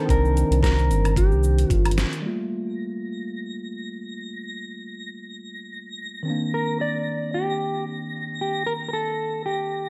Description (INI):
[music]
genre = sunset chillout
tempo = 112 BPM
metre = 4/4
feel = swing 55% on 16ths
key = G minor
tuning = A4 = 440 Hz
[part]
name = mellow electric guitar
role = melody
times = 0.0-1.9, 6.5-9.9 s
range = G4 to D5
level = -29 LUFS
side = equal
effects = delay
[part]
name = tine electric piano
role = accompaniment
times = 0.0-9.9 s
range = Eb3 to C5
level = -32 LUFS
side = equal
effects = delay
[part]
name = round analog bass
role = bass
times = 0.1-2.0 s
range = G1 to C2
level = -22 LUFS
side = equal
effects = none
[part]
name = electronic kick drum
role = drums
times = 0.1-1.8 s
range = none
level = -25 LUFS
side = equal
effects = small room ambience
[part]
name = smooth R&B drum kit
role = drums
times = 0.1-2.2 s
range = cabasa, hi-hat, snare drum, woodblock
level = -32 LUFS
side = equal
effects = low-pass filter on perc, small room ambience, low-pass filter on hats, low-pass filter on snare
[part]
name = twinkling granular texture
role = texture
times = 2.8-9.9 s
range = Bb6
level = -37 LUFS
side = equal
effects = built-in reverb
[sound]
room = light reverb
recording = dark, warm production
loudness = -24 LUFS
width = mono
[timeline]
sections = 0.0-2.2 A section; 2.2-9.9 B section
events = band accent 2.0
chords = 0.0 Cm9; 2.2 Gm9; 6.3 Cm9